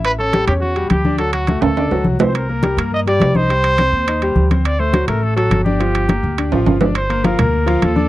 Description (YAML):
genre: latin, salsa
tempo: 208 BPM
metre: 4/4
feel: straight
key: G minor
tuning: A4 = 440 Hz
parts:
  - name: bright concert grand piano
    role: accompaniment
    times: 0.0-8.1 s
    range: F3 to D6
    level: -20 LUFS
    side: left 3 dB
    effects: none
  - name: upright bass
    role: bass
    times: 0.0-8.1 s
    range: G1 to G2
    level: -19 LUFS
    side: equal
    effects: none
  - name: timbales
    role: percussion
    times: 0.0-8.0 s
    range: none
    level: -21 LUFS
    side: right 6 dB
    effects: none
  - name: clear trumpet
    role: melody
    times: 0.1-8.1 s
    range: F#4 to Eb5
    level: -20 LUFS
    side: right 1 dB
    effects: none
  - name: congas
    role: percussion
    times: 0.1-8.1 s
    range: none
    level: -19 LUFS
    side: left 1 dB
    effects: none
room: little or no reverb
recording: dry, close 1970s-style studio recording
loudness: -14 LUFS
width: side -15 dB against mid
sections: 0.0-7.0 A section; 7.0-8.1 A section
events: drum fill 1.6-2.3, 6.5-7.0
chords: 0.0 A7; 1.2 D; 2.3 Cm7; 3.5 Cmadd9; 4.7 D7; 5.8 Gm7